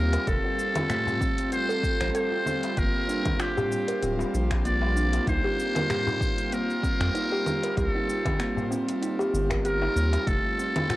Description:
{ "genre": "organic downtempo", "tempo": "96 BPM", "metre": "4/4", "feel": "swing 55% on 16ths", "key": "C dorian", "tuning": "A4 = 445 Hz", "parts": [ { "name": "trumpet with metal mute", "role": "melody", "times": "0.0-11.0 s", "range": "G4 to D5", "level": "-30 LUFS", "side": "equal", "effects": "cassette tape, tape echo" }, { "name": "airy breathy pad", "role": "sustained chords", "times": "0.0-11.0 s", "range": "G3 to A4", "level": "-32 LUFS", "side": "right 1 dB", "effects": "chorus, sidechain pumping" }, { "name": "round analog bass", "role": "bass", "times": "0.0-10.4 s", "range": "D1 to F2", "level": "-26 LUFS", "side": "equal", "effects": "sidechain pumping" }, { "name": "kalimba", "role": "arpeggios", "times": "0.1-11.0 s", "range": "A3 to C5", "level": "-30 LUFS", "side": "equal", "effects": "tape echo" }, { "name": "deep house drum kit", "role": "drums", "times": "0.1-11.0 s", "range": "cabasa, congas, finger snaps, hi-hat", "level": "-33 LUFS", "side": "right 1 dB", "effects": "overdrive" }, { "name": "darbuka", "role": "percussion", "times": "0.1-11.0 s", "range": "none", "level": "-36 LUFS", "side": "left 4 dB", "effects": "none" }, { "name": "electronic kick drum", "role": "drums", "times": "0.3-10.4 s", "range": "none", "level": "-30 LUFS", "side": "equal", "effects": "overdrive" } ], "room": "moderate spring reverb, RT60 1.5 s", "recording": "home recording on cassette", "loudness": "-24 LUFS", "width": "side -17 dB against mid", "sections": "0.0-11.0 A section", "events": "none", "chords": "0.3 F; 2.8 Gm7; 5.3 Cm7; 10.3 F", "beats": "| 0.27 0.90 1.52 2.15 | 2.77 3.40 4.02 4.65 | 5.27 5.90 6.52 7.15 | 7.77 8.40 9.02 9.65 | 10.27 10.90" }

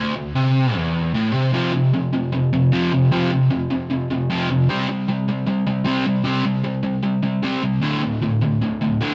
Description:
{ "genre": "punk", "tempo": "153 BPM", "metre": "4/4", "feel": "straight", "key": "unclear", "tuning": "A4 = 440 Hz", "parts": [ { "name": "overdriven electric guitar", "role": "solo", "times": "0.0-9.1 s", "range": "D2 to C4", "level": "-20 LUFS", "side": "equal", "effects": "digital delay" } ], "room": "moderate studio reverb, RT60 0.6 s", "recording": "rough rehearsal-room recording, nothing above 8.0 kHz", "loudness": "-20 LUFS", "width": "mono", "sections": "0.0-1.5 A section; 1.5-9.1 B section", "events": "none", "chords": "0.0 D5; 1.5 F5; 4.7 C5; 7.8 D5", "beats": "0.35 0.75 1.14 | 1.53 1.93 2.32 2.71 | 3.11 3.50 3.90 4.29 | 4.68 5.08 5.47 5.86 | 6.26 6.65 7.04 7.43 | 7.83 8.22 8.61 9.01" }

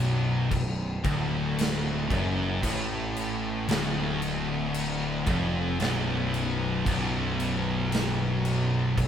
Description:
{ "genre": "stoner and doom metal", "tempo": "57 BPM", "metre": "4/4", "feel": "straight", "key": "B minor", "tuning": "A4 = 440 Hz", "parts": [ { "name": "heavy high-gain guitar", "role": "riff", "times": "0.0-9.1 s", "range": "B1 to A2", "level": "-32 LUFS", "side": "equal", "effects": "distortion" }, { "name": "thick fuzz guitar", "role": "riff", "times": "0.0-9.1 s", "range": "B1 to A2", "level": "-30 LUFS", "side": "left 5 dB", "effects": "distortion" }, { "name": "thick fuzz guitar", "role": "riff", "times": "0.0-9.1 s", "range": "B1 to A2", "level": "-32 LUFS", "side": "right 7 dB", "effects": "distortion" }, { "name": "fuzz picked electric bass", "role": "bass", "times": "0.0-9.1 s", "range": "B0 to A1", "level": "-32 LUFS", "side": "equal", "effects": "overdrive, tube saturation" }, { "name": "big rock drum kit", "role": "drums", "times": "0.5-9.1 s", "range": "crash cymbal, kick drum, snare drum", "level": "-32 LUFS", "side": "equal", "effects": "none" } ], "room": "moderate studio reverb, RT60 0.8 s", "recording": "band playing live in one room", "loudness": "-25 LUFS", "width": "side -9 dB against mid", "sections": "0.0-9.1 A section", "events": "none", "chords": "0.0 Bm", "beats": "0.51 1.57 | 2.63 3.69 4.75 5.81 | 6.87 7.92 8.98" }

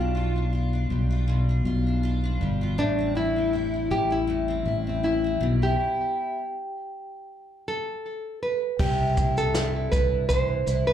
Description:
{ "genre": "acoustic pop", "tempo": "80 BPM", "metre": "4/4", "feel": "swing 55% on 16ths", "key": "C major", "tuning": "A4 = 440 Hz", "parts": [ { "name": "nylon-string guitar", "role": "melody", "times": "0.0-10.9 s", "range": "D4 to C5", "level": "-26 LUFS", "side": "equal", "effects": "plate reverb, slapback echo, digital delay" }, { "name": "picked steel-string acoustic guitar", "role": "accompaniment", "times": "0.0-10.9 s", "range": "A2 to F4", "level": "-29 LUFS", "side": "left 2 dB", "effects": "double-tracked left and right, slapback echo" }, { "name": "fingered electric bass", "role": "bass", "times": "0.0-10.9 s", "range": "G1 to C2", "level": "-26 LUFS", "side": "equal", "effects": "none" }, { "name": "jazz brush drum kit", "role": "drums", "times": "8.8-10.9 s", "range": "crash cymbal, kick drum, shaker, snare drum", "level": "-27 LUFS", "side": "equal", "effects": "none" } ], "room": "moderate club reverb, RT60 0.5 s", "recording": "live gig heard through the venue's PA, club reverb", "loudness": "-23 LUFS", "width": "side -10 dB against mid", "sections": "0.0-8.8 A section; 8.8-10.9 B section", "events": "stop 5.8-8.8", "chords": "0.0 G7/B; 2.8 Am7; 5.4 Em/B; 8.8 Cadd9", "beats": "0.52 1.28 2.03 | 2.78 3.53 4.29 5.04 | 5.79 6.54 7.29 8.04 | 8.80 9.55 10.30" }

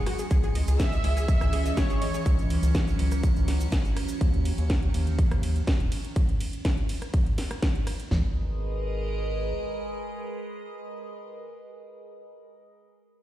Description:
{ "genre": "progressive house", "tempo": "123 BPM", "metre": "4/4", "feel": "straight", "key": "G# minor", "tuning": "A4 = 440 Hz", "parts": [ { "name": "evolving wavetable pad", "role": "sustained chords", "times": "0.0-12.4 s", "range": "D#3 to D#5", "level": "-34 LUFS", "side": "right 2 dB", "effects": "phaser, built-in reverb, sidechain pumping" }, { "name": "wide unison pluck", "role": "arpeggios", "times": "0.0-2.2 s", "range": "F#4 to D#5", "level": "-36 LUFS", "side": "left 2 dB", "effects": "sidechain pumping, ping-pong delay" }, { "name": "round analog bass", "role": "bass", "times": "0.0-9.5 s", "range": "D#1 to D#2", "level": "-27 LUFS", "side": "equal", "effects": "sidechain pumping" }, { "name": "drifting glass-harmonics texture", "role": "texture", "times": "0.0-4.2 s", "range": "C#7", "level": "-48 LUFS", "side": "right 3 dB", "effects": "chorus, built-in reverb, sidechain pumping" }, { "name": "house drum kit", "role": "drums", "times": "0.1-8.1 s", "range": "hi-hat, ride cymbal, rim click, snare drum", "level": "-35 LUFS", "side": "equal", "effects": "none" }, { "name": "cabasa", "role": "percussion", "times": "0.2-4.2 s", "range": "none", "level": "-46 LUFS", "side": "right 4 dB", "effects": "none" }, { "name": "big-room dance drum kit", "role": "drums", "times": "0.3-8.2 s", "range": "kick drum, snare drum, toms", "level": "-25 LUFS", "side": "equal", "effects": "none" }, { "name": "soft supersaw", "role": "melody", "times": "0.8-2.2 s", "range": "C#5 to E5", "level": "-36 LUFS", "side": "equal", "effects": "sidechain pumping, ping-pong delay" }, { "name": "dark symphonic violin section", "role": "second line", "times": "0.8-2.2 s", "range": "C#6 to E6", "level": "-41 LUFS", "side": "right 3 dB", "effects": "sidechain pumping, ping-pong delay" } ], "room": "digital ambience", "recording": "played on a big sound system in a bare room, stone room reverb", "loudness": "-24 LUFS", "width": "side -13 dB against mid", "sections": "0.0-8.1 A section; 8.1-12.0 B section", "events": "drop 0.0-8.1", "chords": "0.3 C#m; 4.2 D#m7; 8.1 G#madd9", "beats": "| 0.31 0.80 1.28 1.77 | 2.26 2.75 3.23 3.72 | 4.21 4.70 5.19 5.67 | 6.16 6.65 7.14 7.62 | 8.11 8.60 9.09 9.58 | 10.06 10.55 11.04 11.53" }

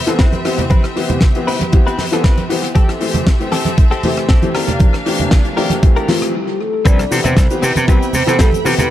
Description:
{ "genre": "nu-disco, nu disco", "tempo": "117 BPM", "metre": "4/4", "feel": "straight", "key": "C major", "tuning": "A4 = 435 Hz", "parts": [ { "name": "clear symphonic string section", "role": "sustained chords", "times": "0.0-8.9 s", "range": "Bb3 to B5", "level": "-25 LUFS", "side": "left 1 dB", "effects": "sidechain pumping" }, { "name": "clear grand piano", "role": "accompaniment", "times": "0.1-8.8 s", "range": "E3 to A4", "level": "-20 LUFS", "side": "left 2 dB", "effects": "sidechain pumping, tape echo" }, { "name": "damped 70s drum kit", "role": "drums", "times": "0.1-8.9 s", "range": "cabasa, hi-hat, rim click, snare drum", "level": "-21 LUFS", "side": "left 1 dB", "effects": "tape echo" }, { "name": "direct-recorded clean electric guitar", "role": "riff", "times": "0.2-8.8 s", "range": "C4 to B4", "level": "-24 LUFS", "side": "left 2 dB", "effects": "analog chorus, low-pass filter, tape echo" }, { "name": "electronic kick drum", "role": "drums", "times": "0.2-8.5 s", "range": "none", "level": "-11 LUFS", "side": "equal", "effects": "overdrive" }, { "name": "congas", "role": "percussion", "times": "0.3-8.9 s", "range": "none", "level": "-22 LUFS", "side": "right 3 dB", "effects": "tape echo" }, { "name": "soft octave-layered synth lead", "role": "melody", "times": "6.1-8.9 s", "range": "F4 to D5", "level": "-20 LUFS", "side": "equal", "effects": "chorus, phaser, tape echo" }, { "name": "gritty slap bass", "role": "bass", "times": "6.9-8.9 s", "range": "C2 to C3", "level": "-17 LUFS", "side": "equal", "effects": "overdrive" } ], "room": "light reverb, studio reverb", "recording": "echo-heavy mix", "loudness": "-12 LUFS", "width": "side -12 dB against mid", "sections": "0.0-6.9 A section; 6.9-8.9 B section", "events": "build-up 0.0-6.9; stop 6.3-6.9; drop 6.9-8.9", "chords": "0.0 Cmaj7; 2.8 Am7; 4.6 Bb6; 6.9 Cmaj7", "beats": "0.19 | 0.70 1.22 1.73 2.24 | 2.76 3.27 3.78 4.29 | 4.81 5.32 5.83 6.35 | 6.86 7.37 7.88 8.40" }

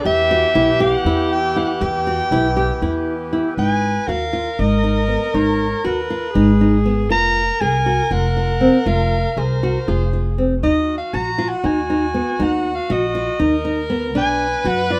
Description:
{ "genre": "contemporary instrumental, chamber music in an uneven meter", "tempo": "238 BPM (eighths)", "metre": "7/8", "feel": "straight", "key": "unclear", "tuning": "A4 = 435 Hz", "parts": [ { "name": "warm soprano saxophone", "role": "melody", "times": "0.0-15.0 s", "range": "B4 to A#5", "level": "-24 LUFS", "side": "equal", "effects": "none" }, { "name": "warm viola", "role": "second line", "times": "0.0-15.0 s", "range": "F#4 to B4", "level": "-27 LUFS", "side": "equal", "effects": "none" }, { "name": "hand-pumped harmonium", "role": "sustained chords", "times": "0.0-3.5 s", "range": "E3 to G4", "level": "-29 LUFS", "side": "equal", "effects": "none" }, { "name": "upright bass", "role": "bass", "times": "0.0-15.0 s", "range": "F1 to F#2", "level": "-23 LUFS", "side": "equal", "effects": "none" }, { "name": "nylon-string guitar", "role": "arpeggios", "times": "0.1-15.0 s", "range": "B3 to Ab4", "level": "-23 LUFS", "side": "equal", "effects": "none" } ], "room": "light reverb", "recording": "none", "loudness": "-18 LUFS", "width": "mono", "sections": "0.0-3.6 A section; 3.6-15.0 B section", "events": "none", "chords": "0.1 Em; 3.6 G#m; 7.1 Fm; 10.6 D#m; 14.1 Bm", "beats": "| 0.05 0.30 0.55 0.81 1.06 1.31 1.56 | 1.81 2.06 2.32 2.57 2.82 3.07 3.32 | 3.58 3.83 4.08 4.33 4.58 4.83 5.09 | 5.34 5.59 5.84 6.09 6.35 6.60 6.85 | 7.10 7.35 7.61 7.86 8.11 8.36 8.61 | 8.86 9.12 9.37 9.62 9.87 10.12 10.38 | 10.63 10.88 11.13 11.38 11.63 11.88 12.14 | 12.39 12.64 12.89 13.14 13.39 13.64 13.90 | 14.15 14.40 14.65 14.90" }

